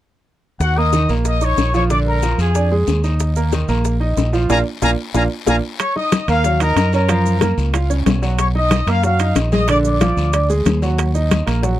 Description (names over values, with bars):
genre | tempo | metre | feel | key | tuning
latin, salsa | 185 BPM | 4/4 | straight | Eb minor | A4 = 438 Hz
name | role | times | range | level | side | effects
bright trumpet section | melody | 0.6-10.5 s | Gb4 to Eb6 | -19 LUFS | left 2 dB | none
deep dub fingered electric bass | bass | 0.6-11.8 s | Bb1 to Gb2 | -17 LUFS | equal | none
bongos | percussion | 0.6-11.8 s | none | -23 LUFS | left 9 dB | none
guiro | percussion | 0.6-11.8 s | none | -34 LUFS | left 10 dB | none
maracas | percussion | 0.6-11.8 s | none | -32 LUFS | right 18 dB | none
bright grand piano | accompaniment | 0.8-11.8 s | D3 to F5 | -21 LUFS | right 3 dB | none
congas | percussion | 5.8-11.8 s | none | -22 LUFS | left 3 dB | none
timbales | percussion | 5.8-11.6 s | none | -24 LUFS | right 8 dB | none
room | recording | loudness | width
light reverb | dry, close 1970s-style studio recording | -14 LUFS | side -13 dB against mid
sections
0.6-5.8 A section; 5.8-11.8 B section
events
band accent 4.5-5.8; drum fill 4.8-5.8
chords
0.6 Ebm7; 1.9 Bb7; 3.2 Eb5; 4.5 Bb7; 5.8 Ebm9; 7.1 Gbmaj7; 8.4 Bmaj7; 9.7 Bb7; 11.0 Ebm